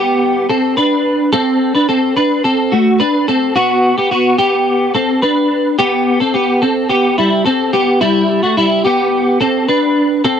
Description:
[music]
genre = indie pop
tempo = 108 BPM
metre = 4/4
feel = straight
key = unclear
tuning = A4 = 440 Hz
[part]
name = clean electric guitar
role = solo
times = 0.0-10.4 s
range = G3 to B4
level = -11 LUFS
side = equal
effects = ensemble chorus
[sound]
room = light reverb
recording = dry, close 1970s-style studio recording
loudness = -11 LUFS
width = side -8 dB against mid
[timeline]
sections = 0.0-10.4 A section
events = none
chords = 0.0 Em7 (rootless); 1.3 D7; 3.6 Gmaj7; 5.8 Cmaj7; 8.0 Em7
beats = 0.21 0.77 | 1.33 1.89 2.44 3.00 | 3.56 4.11 4.67 5.23 | 5.79 6.34 6.90 7.46 | 8.02 8.57 9.13 9.69 | 10.25

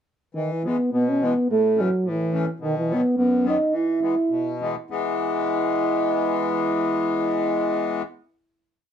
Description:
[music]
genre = alpine folk, alpine dance band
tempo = 94-110 BPM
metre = 2/4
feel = rubato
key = E major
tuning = A4 = 439 Hz
[part]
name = mellow euphonium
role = melody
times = 0.3-8.0 s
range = D#3 to E4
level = -22 LUFS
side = right 1 dB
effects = none
[part]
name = accordion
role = accompaniment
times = 0.3-8.0 s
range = F#2 to C#4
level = -25 LUFS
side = left 3 dB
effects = none
[sound]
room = moderate studio ambience, RT60 0.5 s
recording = none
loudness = -20 LUFS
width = side -8 dB against mid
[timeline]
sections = 0.4-4.9 A section; 4.9-7.4 final chord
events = slowing down 2.6-4.9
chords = 0.4 E; 1.5 A; 2.6 B; 3.7 E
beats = | 0.36 0.92 | 1.48 2.04 | 2.60 3.15 | 3.72 4.30 | 4.92 5.55 | 6.17 6.78

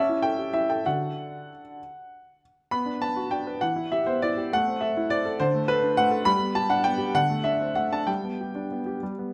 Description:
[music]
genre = classical-period piano sonatina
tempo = 66 BPM (dotted quarters)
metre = 6/8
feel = rubato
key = unclear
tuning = A4 = 440 Hz
[part]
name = clear grand piano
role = solo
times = 0.0-9.3 s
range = D3 to B5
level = -26 LUFS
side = equal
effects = none
[sound]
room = moderate recital hall reverb, RT60 1.5 s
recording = close, detailed microphones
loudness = -26 LUFS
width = mono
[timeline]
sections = 0.0-9.3 A section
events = none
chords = 0.0 A7/C#; 0.9 D; 2.7 Bm; 3.6 Em; 4.5 Am; 5.4 D5; 6.3 G; 7.2 D5; 8.1 G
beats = | 0.86 1.78 | 2.71 3.62 | 4.52 5.40 | 6.27 7.16 | 8.08 9.01

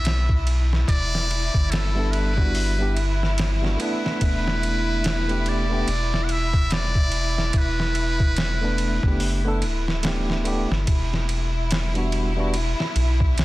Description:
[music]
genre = trip hop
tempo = 72 BPM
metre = 4/4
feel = swing 59% on 16ths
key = E minor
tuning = A4 = 439 Hz
[part]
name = trumpet with metal mute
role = melody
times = 0.0-10.1 s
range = A4 to F#5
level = -28 LUFS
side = equal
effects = dub echo
[part]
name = warm chamber violin section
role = sustained chords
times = 0.0-13.4 s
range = E4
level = -30 LUFS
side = equal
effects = none
[part]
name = round analog bass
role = bass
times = 0.0-13.4 s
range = D1 to B1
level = -24 LUFS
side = equal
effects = none
[part]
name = trip hop sampler-style drum kit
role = drums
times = 0.1-13.4 s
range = hi-hat, kick drum, ride cymbal, snare drum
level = -25 LUFS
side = equal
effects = soft clipping on snare
[part]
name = tine electric piano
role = accompaniment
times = 1.9-12.5 s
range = G3 to B4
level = -28 LUFS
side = right 1 dB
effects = tremolo, tape echo
[sound]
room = little or no reverb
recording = dense, heavily limited modern master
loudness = -20 LUFS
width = side -18 dB against mid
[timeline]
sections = 0.0-13.4 A section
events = none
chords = 0.0 Em7; 4.2 Gadd9/E; 10.9 Em9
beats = 0.04 | 0.88 1.71 2.54 3.38 | 4.21 5.04 5.88 6.71 | 7.54 8.38 9.21 10.04 | 10.88 11.71 12.54 13.38

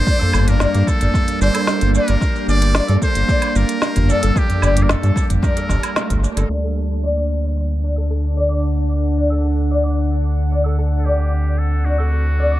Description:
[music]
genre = organic downtempo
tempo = 112 BPM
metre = 4/4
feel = straight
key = unclear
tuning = A4 = 439 Hz
[part]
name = trumpet with metal mute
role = melody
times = 0.0-6.2, 11.0-12.6 s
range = F#4 to D5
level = -24 LUFS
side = equal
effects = tape echo
[part]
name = bowed-like drone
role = sustained chords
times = 0.0-12.6 s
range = D3 to F#5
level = -24 LUFS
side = equal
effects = built-in reverb, sidechain pumping
[part]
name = round analog bass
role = bass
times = 0.0-12.6 s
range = G1 to G2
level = -17 LUFS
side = equal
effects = sidechain pumping
[part]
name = oud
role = arpeggios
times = 0.1-12.6 s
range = A3 to D5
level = -25 LUFS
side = left 2 dB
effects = low-pass filter, tape echo
[part]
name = electronic kick drum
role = drums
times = 0.1-6.2 s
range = none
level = -19 LUFS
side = equal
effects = none
[part]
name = organic electronic drum kit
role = drums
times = 0.1-6.5 s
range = hi-hat, shaker, snare drum, woodblock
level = -24 LUFS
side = equal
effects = tape echo
[part]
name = tabla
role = percussion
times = 0.2-6.3 s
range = none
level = -25 LUFS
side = right 1 dB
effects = tape echo
[sound]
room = light reverb, digital ambience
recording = echo-heavy mix, low-pass filter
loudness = -15 LUFS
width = side -14 dB against mid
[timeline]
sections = 0.0-6.5 A section; 6.5-12.6 B section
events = band accent 6.0; filter sweep on oud 6.5-12.6; filter sweep on synth drone 6.5-12.6; filter sweep 6.5-12.6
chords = 0.0 Gmadd9; 6.5 D7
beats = | 0.07 0.61 1.14 1.68 | 2.21 2.75 3.28 3.82 | 4.36 4.89 5.43 5.96 | 6.50 7.03 7.57 8.11 | 8.64 9.18 9.71 10.25 | 10.78 11.32 11.86 12.39

